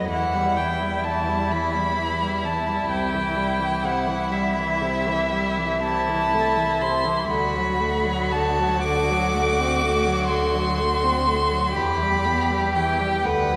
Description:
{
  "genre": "classical, slow romantic movement for string quartet",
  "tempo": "38-43 BPM (dotted quarters)",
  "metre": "6/8",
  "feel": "rubato",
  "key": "unclear",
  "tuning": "A4 = 439 Hz",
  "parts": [
    { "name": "warm violin", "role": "melody", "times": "0.0-13.6 s", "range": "D#5 to D6", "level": "-26 LUFS", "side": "equal", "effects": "none" },
    { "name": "rich violin", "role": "second line", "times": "0.0-13.6 s", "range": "E4 to B4", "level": "-28 LUFS", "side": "equal", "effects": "none" },
    { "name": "rich viola", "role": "accompaniment", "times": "0.0-13.6 s", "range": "C3 to C4", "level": "-29 LUFS", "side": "equal", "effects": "none" },
    { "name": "rich cello", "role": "bass", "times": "0.0-13.6 s", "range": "C2 to E2", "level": "-31 LUFS", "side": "equal", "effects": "none" }
  ],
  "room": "wet concert hall reverb, RT60 2.2 s",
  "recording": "recorded in a church or concert hall",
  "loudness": "-22 LUFS",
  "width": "mono",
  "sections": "0.0-13.6 A section",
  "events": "none",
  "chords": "0.1 Em; 2.9 C; 5.8 Am/C; 7.3 D; 8.8 D7; 11.8 Em"
}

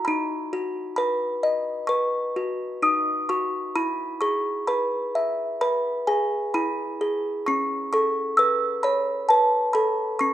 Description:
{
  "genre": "children's music, lullaby",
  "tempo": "65 BPM",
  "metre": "4/4",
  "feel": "rubato",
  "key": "E major",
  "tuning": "A4 = 438 Hz",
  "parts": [
    { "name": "music box", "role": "solo", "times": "0.0-10.3 s", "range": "C#4 to E6", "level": "-22 LUFS", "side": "equal", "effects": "none" }
  ],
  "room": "moderate recital hall reverb, RT60 1.7 s",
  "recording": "minimal, uncompressed stereo recording",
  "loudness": "-22 LUFS",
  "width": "side -12 dB against mid",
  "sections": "0.0-3.8 A section; 3.8-10.3 B section",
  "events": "none",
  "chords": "0.1 B; 3.8 E; 7.5 Aadd9"
}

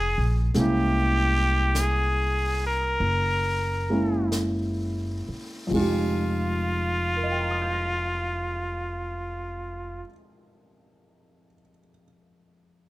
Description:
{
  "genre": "jazz ballad",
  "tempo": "42-52 BPM",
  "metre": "4/4",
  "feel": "swing 69% on 8ths",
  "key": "F minor",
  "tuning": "A4 = 440 Hz",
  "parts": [
    { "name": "trumpet with straight mute", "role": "melody", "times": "0.0-10.0 s", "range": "F4 to Bb4", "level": "-27 LUFS", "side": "equal", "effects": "plate reverb" },
    { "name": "warm baby grand piano", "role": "accompaniment", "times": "0.0-12.9 s", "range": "F2 to Bb6", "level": "-27 LUFS", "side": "equal", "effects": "none" },
    { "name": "upright bass", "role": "bass", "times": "0.0-10.0 s", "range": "F1 to C2", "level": "-27 LUFS", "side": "equal", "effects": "none" },
    { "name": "jazz brush drum kit", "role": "drums", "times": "0.5-6.4 s", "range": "brushed snare drum, hi-hat, kick drum, ride cymbal, snare drum", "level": "-38 LUFS", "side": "left 1 dB", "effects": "none" }
  ],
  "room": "moderate large studio reverb, RT60 1.0 s",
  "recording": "none",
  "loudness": "-23 LUFS",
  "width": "side -17 dB against mid",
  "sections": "0.0-5.7 A section; 5.7-11.4 B section",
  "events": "slowing down 0.0-5.7",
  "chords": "0.0 Fm7; 0.5 C7b9b13; 3.0 Gb7; 5.7 Fm7"
}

